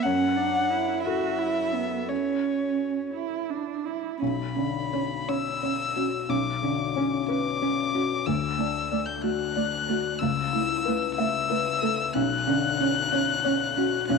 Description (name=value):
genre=neoclassical piano and strings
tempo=55-63 BPM (dotted quarters)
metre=6/8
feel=rubato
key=B minor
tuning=A4 = 440 Hz
part: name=warm violin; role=melody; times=0.0-14.2 s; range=C#5 to G6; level=-28 LUFS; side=left 6 dB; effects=none
part: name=dark cello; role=second line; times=0.0-14.2 s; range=A3 to F#4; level=-28 LUFS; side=right 10 dB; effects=tape echo
part: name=felt-muted upright piano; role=accompaniment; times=0.0-14.2 s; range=B1 to E5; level=-29 LUFS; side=left 10 dB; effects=none
room=wet spring reverb, RT60 2.3 s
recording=1960s-style stereo with parts hard left and right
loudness=-24 LUFS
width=side -4 dB against mid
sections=0.0-4.2 A section; 4.2-14.2 B section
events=none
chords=0.0 F#m7; 4.2 Bmadd9; 8.3 D; 10.2 Aadd9/C#; 12.1 Bmadd9